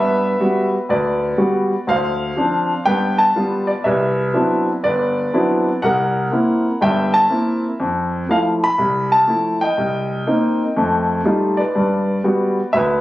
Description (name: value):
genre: solo jazz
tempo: 122 BPM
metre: 4/4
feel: swing 66% on 8ths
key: unclear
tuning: A4 = 441 Hz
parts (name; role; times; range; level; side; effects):
- warm concert grand piano; solo; 0.0-13.0 s; G1 to B5; -15 LUFS; equal; none
room: moderate small room reverb, RT60 0.5 s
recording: recorded on a phone in the room, studio ambience, compression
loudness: -15 LUFS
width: side -16 dB against mid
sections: 0.0-13.0 A section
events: none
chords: 0.0 Gmaj7; 1.9 Dm7; 2.9 G7; 3.9 Cmaj9#11; 5.8 C7; 7.8 Fmaj7; 9.8 Cm7; 10.8 F9; 11.8 Gmaj7